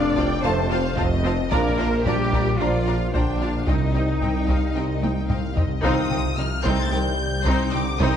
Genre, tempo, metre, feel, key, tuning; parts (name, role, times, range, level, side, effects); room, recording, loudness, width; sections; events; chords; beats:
cinematic, hybrid orchestral and electronic film score; 111 BPM; 4/4; straight; C dorian; A4 = 442 Hz
clear symphonic violin section; melody; 0.0-8.2 s; Bb4 to A6; -31 LUFS; left 4 dB
dark French horn section; sustained chords; 0.0-8.2 s; D3 to D4; -29 LUFS; left 4 dB
clear symphonic double bass section; bass; 0.0-8.1 s; Bb1 to F2; -29 LUFS; right 3 dB
mellow tuba; bass; 0.0-8.1 s; F1 to C2; -28 LUFS; right 2 dB
rich studio cello section; bass; 0.0-8.1 s; C2 to D5; -29 LUFS; right 1 dB
swelling detuned saw bass; bass; 0.0-8.2 s; F1 to C2; -28 LUFS; left 1 dB
bright grand piano; texture; 0.0-8.2 s; Eb4 to F5; -36 LUFS; left 3 dB
warm symphonic violin section; second line; 0.2-8.2 s; C4 to Bb5; -32 LUFS; left 4 dB
clear symphonic viola section; accompaniment; 0.2-8.2 s; C4 to F4; -29 LUFS; right 1 dB
taiko ensemble; drums; 0.2-8.2 s; -27 LUFS; equal
dark trombone section; sustained chords; 0.4-8.2 s; Eb3 to D4; -34 LUFS; right 3 dB
moderate concert hall reverb, RT60 2.1 s; dark, warm production; -20 LUFS; side -9 dB against mid
0.0-5.8 A section; 5.8-8.2 B section
drum fill 5.0-5.8
0.0 F; 1.5 Bb; 3.7 Cm
0.43 0.97 | 1.51 2.06 2.60 3.14 | 3.68 4.22 4.76 5.30 | 5.84 6.38 6.92 7.46 | 8.00